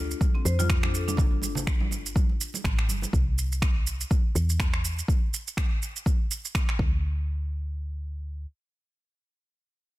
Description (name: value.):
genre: afro house.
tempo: 123 BPM.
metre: 4/4.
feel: swing 57% on 16ths.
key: unclear.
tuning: A4 = 438 Hz.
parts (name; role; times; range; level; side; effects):
woody FM bass; bass; 0.0-8.5 s; G1 to F2; -28 LUFS; equal; sidechain pumping.
electronic shaker and finger snaps; drums; 0.1-6.8 s; none; -33 LUFS; right 4 dB; overdrive, soft clipping on snare.
electronic kick drum; drums; 0.2-6.9 s; none; -24 LUFS; equal; overdrive.
congas; percussion; 0.2-3.1 s; none; -36 LUFS; right 6 dB; none.
marimba with medium hard mallets; arpeggios; 0.3-1.2 s; C4 to C5; -34 LUFS; left 5 dB; sidechain pumping, low-pass filter, tape echo.
room: digital ambience.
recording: dense, heavily limited modern master.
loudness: -24 LUFS.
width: side -17 dB against mid.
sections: 0.0-7.0 A section; 7.0-10.0 B section.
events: filter sweep on marimba 0.0-1.2.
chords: 0.0 Dm7; 1.2 Gsus2; 3.1 C; 5.1 N.C..